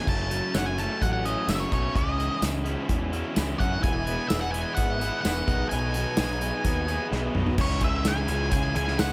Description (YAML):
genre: indie rock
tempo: 128 BPM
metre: 4/4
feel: straight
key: unclear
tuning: A4 = 438 Hz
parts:
  - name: octave-fuzz lead guitar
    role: melody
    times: 0.0-9.1 s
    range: C#5 to A5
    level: -33 LUFS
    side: equal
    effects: distortion, tape echo
  - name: cranked stack guitar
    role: riff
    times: 0.0-9.1 s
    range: F#2 to G#4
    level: -36 LUFS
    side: equal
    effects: overdrive
  - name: raw garage guitar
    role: riff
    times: 0.0-9.1 s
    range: F#2 to G#4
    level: -36 LUFS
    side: equal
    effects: overdrive, analog chorus
  - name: fuzz picked electric bass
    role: bass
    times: 0.1-9.1 s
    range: E1 to F#2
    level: -32 LUFS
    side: equal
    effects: overdrive
  - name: unplugged drum kit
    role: drums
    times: 0.1-9.1 s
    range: crash cymbal, hi-hat, kick drum, snare drum, tambourine, toms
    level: -30 LUFS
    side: equal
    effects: none
  - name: combo organ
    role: sustained chords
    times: 3.8-7.6 s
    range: G#4 to B5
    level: -45 LUFS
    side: equal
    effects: none
  - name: tambourine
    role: percussion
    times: 8.1-9.1 s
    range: none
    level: barely audible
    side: none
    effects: none
room: light reverb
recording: none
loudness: -26 LUFS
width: mono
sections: 0.1-7.6 A section; 7.6-9.1 B section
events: drum fill 7.1-7.6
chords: 0.1 F#m; 2.0 C#madd9; 3.8 Eadd9; 5.5 B6; 7.6 C#m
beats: | 0.07 0.55 1.02 1.49 | 1.96 2.43 2.90 3.37 | 3.84 4.31 4.78 5.25 | 5.72 6.19 6.65 7.12 | 7.59 8.06 8.52 8.99